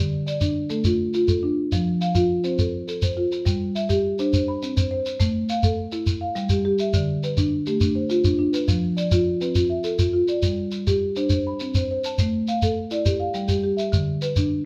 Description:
southern african traditional, mbira-style interlocking cycle; 138 BPM (dotted quarters); 12/8; straight; G mixolydian; A4 = 442 Hz
marimba with soft mallets; arpeggios; 0.0-14.7 s; D3 to B5; -25 LUFS; equal
shekere; percussion; 0.3-14.5 s; -26 LUFS; equal
wet large studio reverb, RT60 0.8 s; band playing live in one room; -23 LUFS; mono
0.0-3.5 A section; 3.5-14.7 B section
0.0 Dm; 1.7 F; 3.5 G5; 4.3 N.C.; 5.2 A5; 6.1 Fsus2; 6.9 Dm; 8.7 F; 10.4 G5; 11.3 Amadd9/C; 12.2 A5; 13.1 G5; 13.9 N.C.
0.41 0.85 1.28 | 1.72 2.15 2.59 3.02 | 3.46 3.89 4.33 4.76 | 5.20 5.63 6.07 6.50 | 6.94 7.37 7.81 8.24 | 8.68 9.12 9.55 9.99 | 10.43 10.87 11.31 11.74 | 12.18 12.62 13.06 13.50 | 13.94 14.37

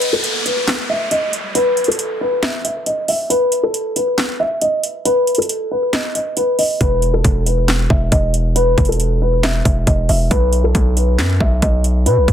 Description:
hip hop, trap; 137 BPM; 4/4; half-time; A4 = 440 Hz
dark concert grand piano; melody; 0.0-12.3 s; A4 to E5; -18 LUFS; left 1 dB; low-pass filter, tape echo
trap drum kit; drums; 0.0-12.3 s; handclaps, hi-hat, kick drum, snare drum; -18 LUFS; equal; overdrive
downlifter; sound effects; 0.0-3.3 s; -24 LUFS; equal
distorted 808-style bass; bass; 6.8-12.3 s; E1 to B2; -16 LUFS; equal; distortion
light reverb, digital ambience; dense, heavily limited modern master; -14 LUFS; side -10 dB against mid
0.0-12.3 A section
break 0.0-6.8
0.0 N.C.; 6.8 E5; 10.3 B5
0.24 0.68 1.11 | 1.55 1.99 2.43 2.87 | 3.30 3.74 4.18 4.62 | 5.05 5.49 5.93 6.37 | 6.81 7.24 7.68 8.12 | 8.56 9.00 9.43 9.87 | 10.31 10.75 11.19 11.62 | 12.06

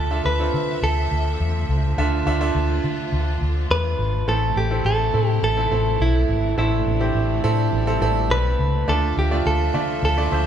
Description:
pop; 104 BPM; 4/4; straight; A minor; A4 = 439 Hz
direct-recorded clean electric guitar; melody; 0.0-10.5 s; E4 to B4; -24 LUFS; right 2 dB
bright upright piano; accompaniment; 0.0-10.5 s; A2 to E5; -26 LUFS; right 4 dB
warm studio string section; sustained chords; 0.0-10.5 s; C3 to E5; -32 LUFS; left 1 dB
vintage muted fingered electric bass; bass; 0.0-10.5 s; G#1 to D3; -21 LUFS; left 1 dB
dark French horn section; second line; 4.3-10.5 s; F3 to A4; -30 LUFS; equal
moderate large studio reverb, RT60 1.3 s; band playing live in one room; -18 LUFS; side -9 dB against mid
0.0-4.3 A section; 4.3-10.5 B section
0.0 Dmadd9; 4.3 Am; 8.9 Dmadd9
0.25 0.82 1.40 | 1.98 2.55 3.13 3.70 | 4.28 4.85 5.43 6.00 | 6.58 7.15 7.73 8.30 | 8.88 9.45 10.03

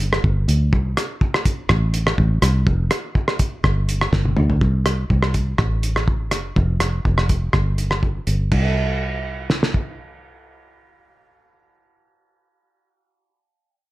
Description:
highlife guitar band; 123 BPM; 4/4; swing 53% on 16ths; A4 = 440 Hz
fingered electric bass; bass; 0.0-12.6 s; F1 to D2; -19 LUFS; equal
cloth-damped thuddy drum kit; drums; 0.0-9.9 s; crash cymbal, hi-hat, kick drum, rim click, snare drum, toms; -20 LUFS; equal
little or no reverb; -17 LUFS; side -18 dB against mid
0.0-4.6 A section; 4.6-8.5 B section; 8.5-12.4 C section
drum fill 4.1-4.6
0.24 | 0.73 1.21 1.70 2.18 | 2.67 3.15 3.64 4.13 | 4.61 5.10 5.59 6.08 | 6.56 7.05 7.54 8.03 | 8.52 9.01 9.50 9.99 | 10.48 10.97 11.46 11.95

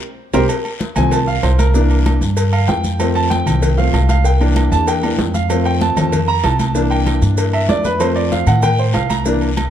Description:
latin, salsa; 192 BPM; 4/4; straight; F major; A4 = 440 Hz
clear concert grand piano; accompaniment; 0.3-9.5 s; E3 to Bb5; -18 LUFS; right 1 dB
upright bass; bass; 0.3-9.7 s; C2 to A2; -16 LUFS; equal
bongos and cowbell; percussion; 0.3-9.7 s; -25 LUFS; left 6 dB
congas; percussion; 0.3-9.7 s; -24 LUFS; left 2 dB
guiro; percussion; 0.3-9.7 s; -32 LUFS; left 8 dB
maracas; percussion; 0.3-9.7 s; -33 LUFS; right 5 dB
timbales and agogo bells; percussion; 0.3-9.7 s; -26 LUFS; right 4 dB
light reverb; dark, warm production; -13 LUFS; side -10 dB against mid
0.5-9.7 A section
band accent 0.0-0.5; grand piano solo 0.5-9.7
0.5 F; 1.8 C7; 3.0 F; 4.3 C7; 5.5 F; 6.8 C7; 8.0 F
0.18 | 0.50 0.81 1.12 1.44 | 1.75 2.06 2.38 2.69 | 3.00 3.31 3.63 3.94 | 4.25 4.56 4.88 5.19 | 5.50 5.81 6.13 6.44 | 6.75 7.07 7.38 7.69 | 8.00 8.32 8.63 8.94 | 9.26 9.57

